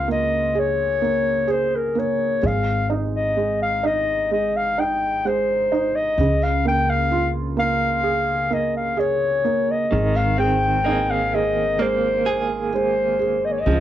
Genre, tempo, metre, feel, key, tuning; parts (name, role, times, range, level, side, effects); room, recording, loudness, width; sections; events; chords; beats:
folk; 64 BPM; 4/4; straight; Ab major; A4 = 440 Hz
dark clarinet; melody; 0.0-13.8 s; Bb4 to G5; -21 LUFS; left 2 dB; cassette tape
felt-muted upright piano; accompaniment; 0.0-13.8 s; Db3 to Ab4; -25 LUFS; right 6 dB; cassette tape
upright bass; bass; 0.0-13.8 s; Ab1 to Db2; -26 LUFS; left 1 dB
direct-recorded clean electric guitar; arpeggios; 9.9-13.8 s; Eb3 to Ab4; -24 LUFS; right 5 dB; tremolo, cassette tape
moderate small room reverb, RT60 0.5 s; home recording on cassette; -18 LUFS; side -12 dB against mid
0.0-13.8 A section
0.0 Db6; 2.4 Ab5; 6.2 Db6; 9.9 Abadd9
0.56 1.50 | 2.44 3.37 4.31 5.24 | 6.18 7.12 8.05 8.99 | 9.93 10.86 11.80 12.73 | 13.66